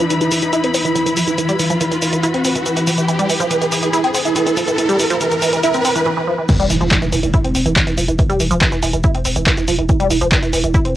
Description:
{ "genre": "driving peak-time techno", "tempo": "141 BPM", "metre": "4/4", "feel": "straight", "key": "unclear", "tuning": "A4 = 440 Hz", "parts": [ { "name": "resonant blip pluck", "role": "riff", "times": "0.0-10.9 s", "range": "E3 to E4", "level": "-18 LUFS", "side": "right 1 dB", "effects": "phaser, sidechain pumping, cassette tape, analog delay" }, { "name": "deep dark ambient pad", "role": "drone", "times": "0.0-6.1 s", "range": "E3", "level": "-26 LUFS", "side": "left 1 dB", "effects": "chorus, built-in reverb, sidechain pumping, cassette tape" }, { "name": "punchy analog drum machine", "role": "drums", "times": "0.0-10.9 s", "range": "crash cymbal, handclaps, hi-hat, shaker", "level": "-20 LUFS", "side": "equal", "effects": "sidechain pumping on hats, high-pass filter on hats, cassette tape, sidechain pumping on perc, high-pass filter on perc, sidechain pumping on cymbals, high-pass filter on cymbals, high-pass filter on snare" }, { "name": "riser and impact", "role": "sound effects", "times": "0.0-8.2 s", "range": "none", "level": "-22 LUFS", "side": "equal", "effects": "none" }, { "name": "warm studio string section", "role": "texture", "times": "0.0-6.1 s", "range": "E4 to B5", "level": "-23 LUFS", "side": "left 2 dB", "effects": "sidechain pumping, cassette tape" }, { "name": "electronic kick drum", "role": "drums", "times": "6.5-10.8 s", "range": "none", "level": "-17 LUFS", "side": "equal", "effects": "cassette tape" }, { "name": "saturated sub bass", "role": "bass", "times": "6.6-10.9 s", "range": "E1", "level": "-22 LUFS", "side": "equal", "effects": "overdrive, sidechain pumping, low-pass filter" } ], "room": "moderate booth ambience, RT60 0.2 s", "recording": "home recording on cassette", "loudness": "-14 LUFS", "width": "side -13 dB against mid", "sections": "0.0-6.5 A section; 6.5-11.0 B section", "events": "build-up 0.0-6.5; riser 0.0-6.1; filter sweep on synth arpeggio sound 0.0-6.5; break 6.1-6.5; drop 6.5-11.0; impact 6.5-8.2", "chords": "0.0 E5" }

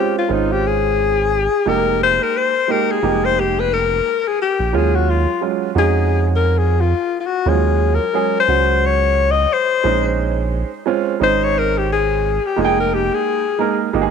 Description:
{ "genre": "hip hop", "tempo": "88 BPM", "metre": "4/4", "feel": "swing 59% on 16ths", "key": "Eb dorian", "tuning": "A4 = 438 Hz", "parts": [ { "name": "breathy alto saxophone", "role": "melody", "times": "0.0-13.8 s", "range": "Eb4 to Eb5", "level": "-17 LUFS", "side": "left 7 dB", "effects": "none" }, { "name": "dark upright piano", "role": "accompaniment", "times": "0.0-14.1 s", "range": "F3 to G5", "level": "-20 LUFS", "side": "right 12 dB", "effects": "none" }, { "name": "round analog bass", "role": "bass", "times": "0.3-14.1 s", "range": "F1 to F2", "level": "-19 LUFS", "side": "right 2 dB", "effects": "none" } ], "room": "moderate plate reverb, RT60 3.4 s", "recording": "1960s-style stereo with parts hard left and right", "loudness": "-15 LUFS", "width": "side -6 dB against mid", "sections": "0.0-14.1 A section", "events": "alto saxophone solo 0.0-14.1", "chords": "0.0 Bbm9 (rootless); 1.7 Fm11; 4.7 Ebm11; 9.8 Bbm11; 12.6 Fm11" }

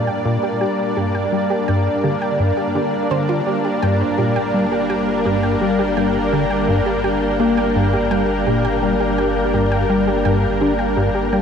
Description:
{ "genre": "ambient, sequencer-driven space music", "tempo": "84 BPM", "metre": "4/4", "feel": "straight", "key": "G minor", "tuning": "A4 = 440 Hz", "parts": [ { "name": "lush unison pad", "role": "sustained chords", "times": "0.0-11.4 s", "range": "G3 to D5", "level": "-19 LUFS", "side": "equal", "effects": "chorus" }, { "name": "plucky analog bass", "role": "riff", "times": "0.0-11.4 s", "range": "G2 to Bb3", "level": "-20 LUFS", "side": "left 1 dB", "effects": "analog chorus, tape echo" }, { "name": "soft round pluck", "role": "arpeggios", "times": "0.1-11.4 s", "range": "F4 to G5", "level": "-27 LUFS", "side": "moving between equal and right 6 dB", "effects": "chorus, auto-pan, tape echo" }, { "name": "warm sub bass", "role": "bass", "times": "3.8-11.4 s", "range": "G1", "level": "-28 LUFS", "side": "equal", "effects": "none" }, { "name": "wind-like tuned noise texture", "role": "texture", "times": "4.9-11.4 s", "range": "G4 to G5", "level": "-28 LUFS", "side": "left 3 dB", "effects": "built-in reverb" } ], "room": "wet huge ambient reverb, RT60 8.2 s", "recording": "none", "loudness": "-16 LUFS", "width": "side -7 dB against mid", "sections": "0.0-11.4 A section", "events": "none", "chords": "0.0 Gm" }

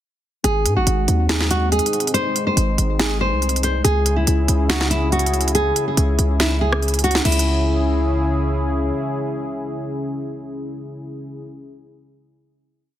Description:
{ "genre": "hip hop, trap", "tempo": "141 BPM", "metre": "4/4", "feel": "half-time", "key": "C# harmonic minor", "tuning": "A4 = 440 Hz", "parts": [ { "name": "nylon-string guitar", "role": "melody", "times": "0.4-8.5 s", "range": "E4 to B#4", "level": "-21 LUFS", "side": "left 1 dB", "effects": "low-pass filter, ping-pong delay" }, { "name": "dark analog pad", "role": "sustained chords", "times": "0.4-11.4 s", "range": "C#3 to G#4", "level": "-26 LUFS", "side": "left 1 dB", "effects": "chorus" }, { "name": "hard-hitting 808-style bass", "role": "bass", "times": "0.4-8.9 s", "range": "G#1 to G#2", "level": "-20 LUFS", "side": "equal", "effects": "none" }, { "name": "trap drum kit", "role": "drums", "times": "0.4-7.5 s", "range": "crash cymbal, hi-hat, rim click, snare drum", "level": "-22 LUFS", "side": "right 1 dB", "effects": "none" } ], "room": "digital ambience", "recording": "dense, heavily limited modern master", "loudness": "-17 LUFS", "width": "side -11 dB against mid", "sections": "0.4-7.2 hook; 7.2-10.7 final chord", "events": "none", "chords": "0.4 G#; 3.8 C#m" }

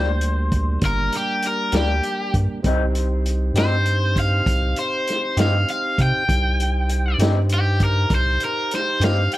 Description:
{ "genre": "slow blues", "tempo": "66 BPM (dotted quarters)", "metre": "12/8", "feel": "straight", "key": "unclear", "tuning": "A4 = 440 Hz", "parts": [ { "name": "cranked stack guitar", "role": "melody", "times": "0.0-9.4 s", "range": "G4 to G5", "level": "-23 LUFS", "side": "left 1 dB", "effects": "overdrive, analog delay" }, { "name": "electric guitar through a small old amp", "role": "accompaniment", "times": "0.0-9.2 s", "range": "C3 to G4", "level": "-28 LUFS", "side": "left 4 dB", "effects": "harmonic tremolo, analog delay" }, { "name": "mellow tonewheel organ", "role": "sustained chords", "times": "0.0-9.4 s", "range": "G3 to C5", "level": "-30 LUFS", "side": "right 2 dB", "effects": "slow rotary speaker" }, { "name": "round analog bass", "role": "bass", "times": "0.0-9.3 s", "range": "G1 to C3", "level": "-20 LUFS", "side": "equal", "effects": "none" }, { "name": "vintage drum kit", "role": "drums", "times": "0.2-9.4 s", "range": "hi-hat, kick drum, snare drum", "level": "-25 LUFS", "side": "equal", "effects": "none" } ], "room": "studio ambience", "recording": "echo-heavy mix", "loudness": "-18 LUFS", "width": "side -16 dB against mid", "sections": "0.0-9.4 A section", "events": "overdriven electric guitar solo 0.0-9.4", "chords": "0.0 Gm; 2.6 Cm" }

